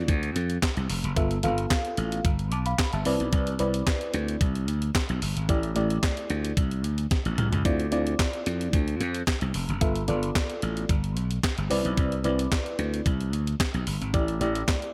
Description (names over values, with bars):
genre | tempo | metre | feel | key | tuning
early-eighties boogie funk | 111 BPM | 4/4 | straight | D dorian | A4 = 440 Hz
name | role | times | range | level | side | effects
mellow FM electric piano | accompaniment | 0.0-14.9 s | A3 to D6 | -32 LUFS | equal | chorus
slap bass | bass | 0.0-14.6 s | F1 to F2 | -30 LUFS | equal | none
clean 12-bit digital drum machine | drums | 0.1-14.9 s | handclaps, hi-hat, kick drum, snare drum, toms | -29 LUFS | equal | none
room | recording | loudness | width
little or no reverb | none | -27 LUFS | mono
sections
0.0-14.9 A section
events
drum fill 7.1-7.7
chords
0.0 Dm7; 1.2 G13; 3.1 Cmaj9; 5.5 A7sus4; 7.7 Dm9; 9.8 G9; 11.7 Cmaj9; 14.1 A7sus4